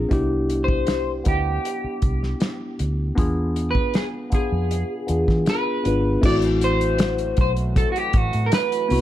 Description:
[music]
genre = lush 1970s-style soul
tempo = 78 BPM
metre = 4/4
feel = straight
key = A dorian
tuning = A4 = 436 Hz
[part]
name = tine electric piano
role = accompaniment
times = 0.0-9.0 s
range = A3 to B4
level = -25 LUFS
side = left 2 dB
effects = phaser
[part]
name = vintage muted fingered electric bass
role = bass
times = 0.0-9.0 s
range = G#1 to E3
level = -24 LUFS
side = equal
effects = none
[part]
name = warm soul drum kit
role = drums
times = 0.1-9.0 s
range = crash cymbal, hi-hat, kick drum, snare drum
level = -22 LUFS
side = equal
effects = none
[part]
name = electric guitar through a small old amp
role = melody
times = 0.6-9.0 s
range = F#4 to D5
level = -25 LUFS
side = equal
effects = wide subtle chorus
[part]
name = warm French horn section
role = sustained chords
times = 6.2-9.0 s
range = E3 to F#4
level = -34 LUFS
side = right 2 dB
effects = stereo widening
[sound]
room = light reverb, small room ambience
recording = dark, warm production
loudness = -19 LUFS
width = side -12 dB against mid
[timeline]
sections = 0.0-6.2 A section; 6.2-9.0 B section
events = none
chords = 0.1 Cmaj7; 3.2 E7b9; 6.2 Am69

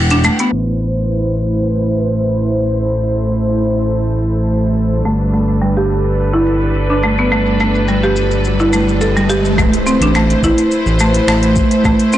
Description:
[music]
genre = organic downtempo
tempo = 106 BPM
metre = 4/4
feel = straight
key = A minor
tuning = A4 = 440 Hz
[part]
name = warm studio string section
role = sustained chords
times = 0.0-12.2 s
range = E3 to F#5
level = -17 LUFS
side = right 1 dB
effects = sidechain pumping
[part]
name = smooth gliding synth bass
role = bass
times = 0.0-11.9 s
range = E1 to A1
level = -17 LUFS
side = equal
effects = none
[part]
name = buzzing marimba with hard mallets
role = arpeggios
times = 0.1-0.5, 5.1-12.2 s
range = G3 to A4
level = -15 LUFS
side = equal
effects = tape echo
[part]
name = deep house drum kit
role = drums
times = 0.1-12.2 s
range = finger snaps, hi-hat, shaker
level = -24 LUFS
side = left 1 dB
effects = soft clipping on snare
[part]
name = riser and impact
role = sound effects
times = 7.6-11.8 s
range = none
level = -24 LUFS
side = right 1 dB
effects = none
[part]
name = electronic kick drum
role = drums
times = 9.6-12.0 s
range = none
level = -17 LUFS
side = equal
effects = none
[sound]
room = light reverb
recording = blown-out, overdriven recording, overdrive, low-pass filter, nothing above 10.4 kHz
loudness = -12 LUFS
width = side -12 dB against mid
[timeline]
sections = 0.5-9.6 A section; 9.6-12.2 B section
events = break 0.0-0.5; band accent 0.0; filter sweep 0.5-9.6; riser 7.6-9.6; impact 9.6-11.8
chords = 0.0 Em7; 0.5 Am; 5.1 G; 9.6 Am

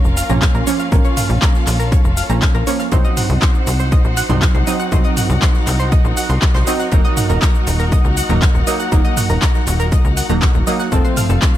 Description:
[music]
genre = melodic techno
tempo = 120 BPM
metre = 4/4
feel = straight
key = unclear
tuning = A4 = 440 Hz
[part]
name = clear studio string section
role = sustained chords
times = 0.0-11.6 s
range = C4 to Gb5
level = -25 LUFS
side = left 1 dB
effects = sidechain pumping
[part]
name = analog pluck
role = arpeggios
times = 0.0-11.5 s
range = A4 to Bb6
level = -25 LUFS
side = equal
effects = chorus, sidechain pumping, ping-pong delay
[part]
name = synth brass stab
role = stabs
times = 0.0-11.6 s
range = F3 to Eb4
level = -22 LUFS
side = right 3 dB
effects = chorus, sidechain pumping, ping-pong delay
[part]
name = tight sequencer bass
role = bass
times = 0.0-11.4 s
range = Eb1 to Db2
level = -18 LUFS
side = equal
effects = sidechain pumping
[part]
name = deep house drum kit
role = drums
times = 0.0-11.6 s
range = handclaps, hi-hat, shaker, toms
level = -21 LUFS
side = equal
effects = overdrive
[part]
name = impact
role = sound effects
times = 0.0-0.9 s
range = none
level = barely audible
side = none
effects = none
[part]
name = soft-mallet drum kit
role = drums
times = 0.2-11.5 s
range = hi-hat, snare drum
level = -34 LUFS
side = right 2 dB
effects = none
[part]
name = electronic kick drum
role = drums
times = 0.4-11.5 s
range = none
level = -14 LUFS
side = equal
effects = none
[sound]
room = little or no reverb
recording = none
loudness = -13 LUFS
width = side -12 dB against mid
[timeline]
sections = 0.0-11.6 A section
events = impact 0.0-0.9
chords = 0.0 Bbm; 2.9 Cdim; 6.9 Ebm; 10.9 F

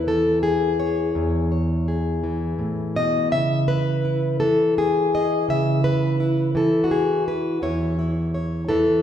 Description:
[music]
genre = folk, solo fingerstyle acoustic guitar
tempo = 84 BPM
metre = 3/4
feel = straight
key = E major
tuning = A4 = 439 Hz
[part]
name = fingerpicked plugged-in steel-string acoustic guitar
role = solo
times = 0.0-9.0 s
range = E2 to E5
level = -19 LUFS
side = left 1 dB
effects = none
[sound]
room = wet recital hall reverb, RT60 1.4 s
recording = recorded in a church or concert hall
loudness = -19 LUFS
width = side -10 dB against mid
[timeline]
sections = 0.0-9.0 A section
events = none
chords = 0.0 E6; 3.3 C#m; 7.6 E5

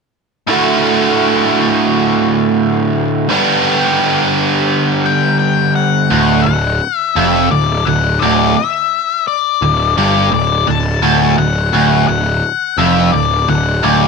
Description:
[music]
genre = rock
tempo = 85 BPM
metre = 4/4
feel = straight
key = D major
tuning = A4 = 440 Hz
[part]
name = biting overdriven guitar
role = riff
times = 0.5-14.1 s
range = D2 to G4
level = -12 LUFS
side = right 2 dB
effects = none
[part]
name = octave-fuzz lead guitar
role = melody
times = 5.1-14.1 s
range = D5 to A5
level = -16 LUFS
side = left 13 dB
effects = distortion, slapback echo
[part]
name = fuzz picked electric bass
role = bass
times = 6.1-14.1 s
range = D1 to G1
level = -17 LUFS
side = right 1 dB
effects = overdrive
[sound]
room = light reverb, digital ambience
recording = none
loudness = -11 LUFS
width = side -4 dB against mid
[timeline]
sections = 0.5-6.1 A section; 6.1-14.1 B section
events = none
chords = 0.5 D; 3.3 G; 6.1 D

